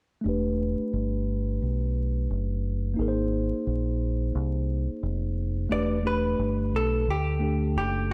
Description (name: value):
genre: hip hop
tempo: 88 BPM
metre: 4/4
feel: swing 58% on 16ths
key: unclear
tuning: A4 = 440 Hz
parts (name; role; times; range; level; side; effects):
- mellow tine electric piano; accompaniment; 0.2-8.1 s; A3 to B#4; -32 LUFS; equal; low-pass filter
- deep dub fingered electric bass; bass; 0.3-8.1 s; E1 to D2; -30 LUFS; equal; none
- vintage hollow-body jazz guitar; melody; 5.7-8.1 s; G4 to D5; -32 LUFS; equal; slapback echo
room: light reverb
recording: dark, warm production, vinyl crackle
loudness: -27 LUFS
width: mono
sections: 0.3-5.7 A section; 5.7-8.1 B section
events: filter sweep on tine electric piano 0.3-5.7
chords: 0.3 Em9; 3.0 G#69; 5.7 Em9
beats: | 0.25 0.93 1.61 2.30 | 2.98 3.66 4.34 5.03 | 5.71 6.39 7.07 7.75